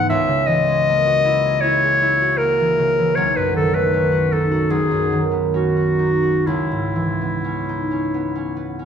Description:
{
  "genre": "classical, impressionist duo for clarinet and harp",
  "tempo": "63-81 BPM",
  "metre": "4/4",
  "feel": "rubato",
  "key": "unclear",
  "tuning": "A4 = 439 Hz",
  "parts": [
    { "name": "bright clarinet", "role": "melody", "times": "0.0-8.8 s", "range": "E4 to E5", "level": "-18 LUFS", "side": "left 1 dB", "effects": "none" },
    { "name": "concert harp", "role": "accompaniment", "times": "0.0-8.8 s", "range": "B1 to G#4", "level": "-20 LUFS", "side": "right 1 dB", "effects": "none" }
  ],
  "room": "wet stone room reverb, RT60 1.3 s",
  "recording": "none",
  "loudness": "-16 LUFS",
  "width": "side -8 dB against mid",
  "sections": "0.0-8.8 A section",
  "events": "none",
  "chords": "0.1 F#13/C#; 3.2 B9; 4.7 Badd9; 6.5 C#m9"
}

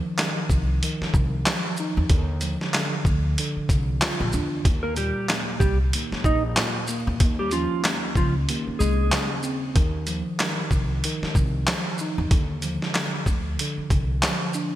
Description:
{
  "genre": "hip hop, boom-bap hip-hop",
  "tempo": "94 BPM",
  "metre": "4/4",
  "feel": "swing 58% on 16ths",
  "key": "unclear",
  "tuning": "A4 = 440 Hz",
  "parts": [
    { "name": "mellow tine electric piano", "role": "accompaniment", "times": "0.0-14.8 s", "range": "Eb2 to F4", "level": "-29 LUFS", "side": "right 1 dB", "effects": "medium stereo tremolo, cassette tape, high-pass filter, low-pass filter" },
    { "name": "boom bap sampler-style drum kit", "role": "drums", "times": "0.2-14.7 s", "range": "handclaps, hi-hat, kick drum, shaker, snare drum", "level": "-24 LUFS", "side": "equal", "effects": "none" },
    { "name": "upright bass", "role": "bass", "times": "0.5-14.2 s", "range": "Bb1 to Fb2", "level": "-25 LUFS", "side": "equal", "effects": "none" },
    { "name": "mellow electric guitar", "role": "melody", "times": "4.8-9.3 s", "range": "F3 to Eb5", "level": "-27 LUFS", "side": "right 1 dB", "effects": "wide subtle chorus, high-pass filter, low-pass filter, digital delay" }
  ],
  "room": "light reverb",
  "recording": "bright 1980s-style digital production",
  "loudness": "-21 LUFS",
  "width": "side -13 dB against mid",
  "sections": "0.0-14.8 A section",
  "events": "none",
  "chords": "0.0 F5; 2.1 Bb (rootless); 4.7 Eb; 7.2 Dbmaj7; 9.8 F5; 12.3 Csus24"
}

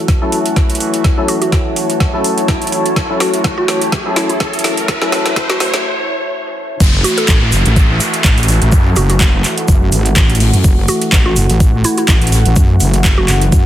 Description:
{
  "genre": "bass house",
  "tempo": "125 BPM",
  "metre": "4/4",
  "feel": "swing 55% on 16ths",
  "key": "F# minor",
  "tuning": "A4 = 440 Hz",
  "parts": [
    { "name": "sweeping resonant pad", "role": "sustained chords", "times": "0.0-13.7 s", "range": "E3 to F#4", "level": "-22 LUFS", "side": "right 1 dB", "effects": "chorus, sidechain pumping" },
    { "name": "percussive organ stab", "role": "stabs", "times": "0.0-5.8 s", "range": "F#3 to A4", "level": "-20 LUFS", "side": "left 2 dB", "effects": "ensemble chorus, sidechain pumping, dub echo" },
    { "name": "riser and downlifter", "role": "sound effects", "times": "2.0-10.6 s", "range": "none", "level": "-22 LUFS", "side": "equal", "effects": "none" },
    { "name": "deep dark ambient pad", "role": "texture", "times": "0.5-13.7 s", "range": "E4 to A5", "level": "-23 LUFS", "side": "left 2 dB", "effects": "chorus, built-in reverb, sidechain pumping" },
    { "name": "electronic kick drum", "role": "drums", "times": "0.1-13.6 s", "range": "none", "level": "-12 LUFS", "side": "equal", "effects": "overdrive, studio reverb" },
    { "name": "garage drum kit", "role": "drums", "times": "0.1-13.6 s", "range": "crash cymbal, handclaps, hi-hat, snare drum", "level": "-18 LUFS", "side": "right 1 dB", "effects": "overdrive, studio reverb" },
    { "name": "mallet-like synth pluck", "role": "melody", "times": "1.3-13.5 s", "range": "E4 to A4", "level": "-21 LUFS", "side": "equal", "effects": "chorus, cassette tape, dub echo" },
    { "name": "wobble bass", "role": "bass", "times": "6.8-13.7 s", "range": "F#1 to F#2", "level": "-13 LUFS", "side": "equal", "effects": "chorus, overdrive, sidechain pumping" },
    { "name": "loose indie drum kit", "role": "drums", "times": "6.8-13.7 s", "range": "hi-hat, shaker, snare drum", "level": "-26 LUFS", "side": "left 2 dB", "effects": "high-pass filter on hats, studio reverb, high-pass filter on snare, high-pass filter on perc, high-pass filter on room" }
  ],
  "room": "light reverb",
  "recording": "dense, heavily limited modern master, high-pass filter",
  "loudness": "-10 LUFS",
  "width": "side -12 dB against mid",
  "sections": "0.0-6.8 A section; 6.8-13.7 B section",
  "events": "build-up 0.0-6.8; drum fill 0.0-5.8; filter sweep 0.0-6.8; riser 2.0-5.8; break 5.8-6.8; drop 6.8-13.7",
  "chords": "0.0 F#m7"
}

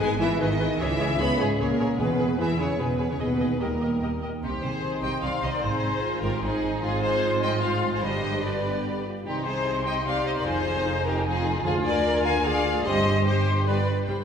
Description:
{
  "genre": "cinematic",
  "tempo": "150 BPM",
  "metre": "3/4",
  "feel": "straight",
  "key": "G# harmonic minor, C minor from 4.4 s",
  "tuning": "A4 = 444 Hz",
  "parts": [
    { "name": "rich symphonic violin section", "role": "melody", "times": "0.0-14.2 s", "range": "G4 to B5", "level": "-30 LUFS", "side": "left 2 dB", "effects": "none" },
    { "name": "clear clarinet", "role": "second line", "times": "0.0-13.9 s", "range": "D4 to B4", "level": "-35 LUFS", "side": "left 3 dB", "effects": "none" },
    { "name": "rich symphonic violin section", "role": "second line", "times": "0.0-14.2 s", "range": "Eb4 to B5", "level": "-33 LUFS", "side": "equal", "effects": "none" },
    { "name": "small flute group", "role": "second line", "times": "0.0-13.9 s", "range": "G5 to C6", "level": "-33 LUFS", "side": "left 2 dB", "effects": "none" },
    { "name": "warm studio viola section", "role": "accompaniment", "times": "0.0-14.2 s", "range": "G3 to D#5", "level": "-33 LUFS", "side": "equal", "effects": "none" },
    { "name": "dark French horn section", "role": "sustained chords", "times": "0.0-14.2 s", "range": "B2 to C5", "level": "-30 LUFS", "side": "left 1 dB", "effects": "none" },
    { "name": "warm trombone section", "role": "sustained chords", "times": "0.0-14.2 s", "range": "B2 to G#3", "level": "-34 LUFS", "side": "right 3 dB", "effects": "none" },
    { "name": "rich symphonic cello section", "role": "bass", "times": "0.0-14.2 s", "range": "C2 to B3", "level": "-31 LUFS", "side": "right 2 dB", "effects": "none" },
    { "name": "warm symphonic double bass section", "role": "bass", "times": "0.0-14.2 s", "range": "F1 to E2", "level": "-30 LUFS", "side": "right 2 dB", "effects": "none" }
  ],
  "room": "wet scoring stage reverb, RT60 2.0 s",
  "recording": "recorded in a church or concert hall",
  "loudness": "-22 LUFS",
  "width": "side -7 dB against mid",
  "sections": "0.0-4.4 A section; 4.4-14.1 B section",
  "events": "none",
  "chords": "0.0 G#m; 0.8 C#m; 2.0 E; 3.2 G#m/D#; 3.6 D#; 4.4 Cm; 5.6 Ab; 8.0 G; 9.3 Cm; 10.5 Fm7; 11.7 Ddim; 12.8 Cm/G; 13.7 G"
}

